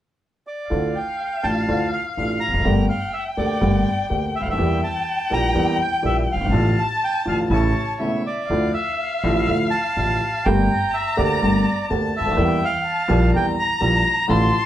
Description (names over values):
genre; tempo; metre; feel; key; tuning
tango; 124 BPM; 4/4; rubato; D minor; A4 = 440 Hz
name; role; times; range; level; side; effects
bandoneon; melody; 0.5-14.7 s; C#5 to Bb5; -24 LUFS; right 1 dB; none
warm violin; second line; 0.7-14.7 s; E5 to C6; -25 LUFS; left 3 dB; none
bright upright piano; accompaniment; 0.7-14.5 s; E1 to G4; -22 LUFS; equal; none
upright bass; bass; 0.7-14.5 s; E1 to E2; -23 LUFS; equal; none
room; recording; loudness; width
wet club reverb, RT60 0.7 s; heard from further back in the room; -18 LUFS; side -12 dB against mid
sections
0.7-8.5 A section; 8.5-14.7 B section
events
break 8.0-8.5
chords
0.0 N.C.; 0.7 Dmadd9; 2.7 Gmadd9; 4.6 Edim; 6.5 Dm/A; 7.5 A; 8.5 Dmadd9; 10.5 Gmadd9; 12.4 Edim